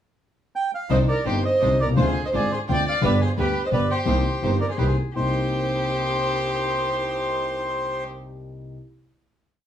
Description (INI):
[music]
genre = tango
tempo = 169 BPM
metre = 3/4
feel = rubato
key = C minor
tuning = A4 = 441 Hz
[part]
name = bandoneon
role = melody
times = 0.6-8.0 s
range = B4 to G5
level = -26 LUFS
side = right 1 dB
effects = none
[part]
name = warm violin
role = second line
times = 0.9-8.0 s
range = G4 to D5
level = -26 LUFS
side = equal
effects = none
[part]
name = warm concert grand piano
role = accompaniment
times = 0.9-8.7 s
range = G1 to G4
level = -25 LUFS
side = left 2 dB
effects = none
[part]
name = rich symphonic string section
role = stabs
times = 0.9-8.0 s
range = D4 to C5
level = -33 LUFS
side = right 3 dB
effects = none
[part]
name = bright double bass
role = bass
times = 0.9-5.3 s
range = G1 to D2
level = -26 LUFS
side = right 1 dB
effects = none
[sound]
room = wet studio reverb, RT60 0.5 s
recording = band playing live in one room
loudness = -20 LUFS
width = side -10 dB against mid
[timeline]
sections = 0.0-0.9 pickup bar; 0.9-5.2 A section; 5.2-7.3 final chord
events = none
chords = 0.0 N.C.; 0.9 Cmadd9; 2.0 Dm7b5; 3.0 G; 4.1 Cm7